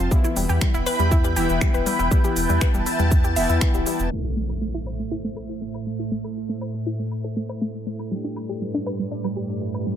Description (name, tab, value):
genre	melodic techno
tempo	120 BPM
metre	4/4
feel	straight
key	A minor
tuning	A4 = 441 Hz
part	lush unison pad	sustained chords	0.0-10.0 s	G2 to B5	-28 LUFS	right 1 dB	chorus, phaser, sidechain pumping
part	analog synth brass	stabs	0.0-10.0 s	E3 to A4	-30 LUFS	left 3 dB	chorus, sidechain pumping, ping-pong delay
part	round analog bass	bass	0.0-4.1 s	D1 to E2	-23 LUFS	equal	sidechain pumping
part	analog pluck	arpeggios	0.1-9.9 s	G3 to E5	-29 LUFS	left 1 dB	chorus, sidechain pumping, ping-pong delay
part	electronic kick drum	drums	0.1-3.7 s	none	-20 LUFS	equal	none
part	house drum kit	drums	0.1-9.8 s	finger snaps, hi-hat, shaker, woodblock	-29 LUFS	right 1 dB	low-pass filter on perc, low-pass filter on hats, low-pass filter on snare
part	analog drone	drone	4.6-10.0 s	A2 to A3	-34 LUFS	right 2 dB	chorus, sidechain pumping
part	impact	sound effects	4.1-6.1 s	none	-30 LUFS	equal	none
room	light reverb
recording	low-pass filter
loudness	-21 LUFS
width	side -10 dB against mid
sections	0.0-4.1 A section; 4.1-10.0 B section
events	impact 4.1-6.1; filter sweep on drum 4.1-10.0; filter sweep on synth arpeggio sound 4.1-10.0; filter sweep on analog polysynth 4.1-10.0; filter sweep on analog synth pad 4.1-10.0; filter sweep 4.1-10.0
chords	0.1 Em; 4.1 Am; 8.1 G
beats	| 0.11 0.61 1.11 1.61 | 2.11 2.61 3.11 3.61 | 4.11 4.61 5.11 5.61 | 6.11 6.61 7.11 7.61 | 8.11 8.61 9.11 9.61